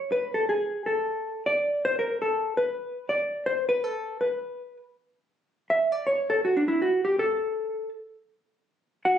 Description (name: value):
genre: jazz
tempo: 161 BPM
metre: 3/4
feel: swing 63% on 8ths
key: unclear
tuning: A4 = 440 Hz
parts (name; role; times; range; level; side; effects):
- hollow-body jazz guitar; solo; 0.0-9.2 s; D4 to F#5; -24 LUFS; equal; none
room: moderate studio reverb, RT60 0.9 s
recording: recorded on a phone in the room, club reverb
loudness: -24 LUFS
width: side -9 dB against mid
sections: 0.0-8.3 A section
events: hollow-body jazz guitar solo 0.0-9.2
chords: none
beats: 0.10 | 0.48 0.85 1.22 | 1.59 1.96 2.33 | 2.71 3.08 3.45 | 3.82 4.19 4.56 | 4.93 5.31 5.68 | 6.05 6.42 6.80 | 7.17 7.54 7.92 | 8.29 8.66 9.04